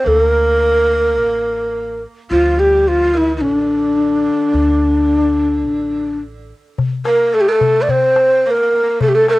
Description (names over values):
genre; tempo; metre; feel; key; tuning
Arabic maqam ensemble; 107 BPM; 4/4; straight; D maqam bayati; A4 = 440 Hz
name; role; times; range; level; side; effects
breathy mellow ney; melody; 0.0-9.4 s; D4 to D5; -13 LUFS; equal; none
bright tenor saxophone; second line; 0.0-9.4 s; D3 to C4; -25 LUFS; right 5 dB; cassette tape, tape echo
upright bass; bass; 0.1-6.5 s; A1 to D2; -22 LUFS; equal; none
darbuka; percussion; 6.8-9.4 s; none; -20 LUFS; left 4 dB; none
room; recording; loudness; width
light reverb; home recording on cassette; -12 LUFS; side -19 dB against mid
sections
0.0-6.8 A section; 6.8-9.4 B section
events
none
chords
none